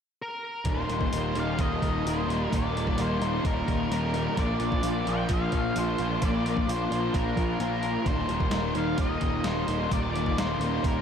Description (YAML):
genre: rock, shoegaze and dream pop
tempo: 130 BPM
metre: 4/4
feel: straight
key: Eb major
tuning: A4 = 440 Hz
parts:
  - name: octave-fuzz lead guitar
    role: melody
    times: 0.2-11.0 s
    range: Bb4 to G5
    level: -33 LUFS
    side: left 1 dB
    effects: distortion, analog delay
  - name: detuned 8-bit digital drum machine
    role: drums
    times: 0.6-10.9 s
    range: hi-hat, kick drum, snare drum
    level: -31 LUFS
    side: equal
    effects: none
  - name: overdriven semi-hollow guitar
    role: riff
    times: 0.7-11.0 s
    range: Eb2 to F4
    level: -28 LUFS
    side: left 1 dB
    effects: analog chorus
  - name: fuzz picked electric bass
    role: bass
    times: 0.7-11.0 s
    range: Eb1 to Bb1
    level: -31 LUFS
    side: equal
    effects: overdrive
room: wet lush hall reverb, RT60 1.9 s, digital ambience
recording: dreamy mix soaked in reverb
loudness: -25 LUFS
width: side -8 dB against mid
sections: 0.7-11.0 A section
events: none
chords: 0.0 N.C.; 0.7 Eb6; 4.4 Bb; 8.1 Eb6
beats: 0.20 | 0.67 1.13 1.59 2.06 | 2.52 2.98 3.44 3.91 | 4.37 4.83 5.29 5.76 | 6.22 6.68 7.14 7.60 | 8.06 8.53 8.99 9.45 | 9.91 10.38 10.84